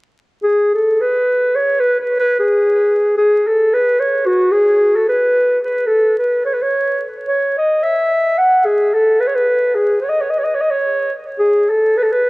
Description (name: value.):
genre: balkan folk.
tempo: free time.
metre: none.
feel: none.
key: C# minor.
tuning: A4 = 440 Hz.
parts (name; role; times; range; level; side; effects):
dark clarinet; solo; 0.4-12.3 s; F#4 to F#5; -13 LUFS; equal; tape echo.
room: wet spring reverb, RT60 2.7 s.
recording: worn, warbling old tape, cassette tape, vinyl crackle, warbly pitch drift.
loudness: -13 LUFS.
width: side -22 dB against mid.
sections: 0.5-11.4 A section.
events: none.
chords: none.